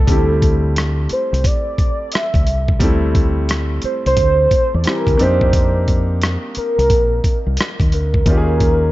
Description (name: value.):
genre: R&B, neo-soul.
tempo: 88 BPM.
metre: 4/4.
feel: swing 64% on 16ths.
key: unclear.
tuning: A4 = 441 Hz.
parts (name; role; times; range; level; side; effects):
warm velvety synth lead; melody; 0.0-8.9 s; A4 to E5; -19 LUFS; right 1 dB; chorus, tape echo.
clear concert grand piano; accompaniment; 0.0-8.9 s; E3 to A4; -23 LUFS; equal; none.
deep dub fingered electric bass; bass; 0.0-8.9 s; Bb1 to F2; -18 LUFS; equal; none.
dusty soul sampler-style drum kit; drums; 0.1-8.8 s; hi-hat, kick drum, rim click; -17 LUFS; equal; none.
room: digital ambience.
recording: dark, warm production, nothing above 7.6 kHz.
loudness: -14 LUFS.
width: side -17 dB against mid.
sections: 0.0-8.9 A section.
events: none.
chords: 0.1 D9sus4; 5.2 F9sus4; 8.3 Eb9sus4.